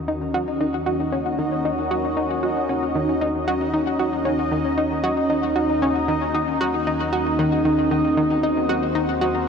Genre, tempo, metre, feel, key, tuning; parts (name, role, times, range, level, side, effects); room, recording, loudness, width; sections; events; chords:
ambient, sequencer-driven space music; 115 BPM; 4/4; straight; Eb dorian; A4 = 439 Hz
sweeping resonant pad; sustained chords; 0.0-9.5 s; Eb2 to Gb4; -23 LUFS; equal; lush chorus
Celtic harp; arpeggios; 0.0-9.5 s; Eb4 to Eb5; -33 LUFS; equal; auto-pan, ping-pong delay
bubbling stepped-filter texture; texture; 0.3-9.5 s; Eb4 to Eb5; -28 LUFS; equal; chorus, built-in reverb
analog pluck; riff; 0.1-9.4 s; Eb3 to Gb4; -23 LUFS; equal; chorus, ping-pong delay
wet huge ambient reverb, RT60 7.5 s; worn, warbling old tape, cassette tape, warbly pitch drift; -19 LUFS; side -6 dB against mid
0.0-9.5 A section
fade-in on harp 0.0-9.5
0.0 Ebm7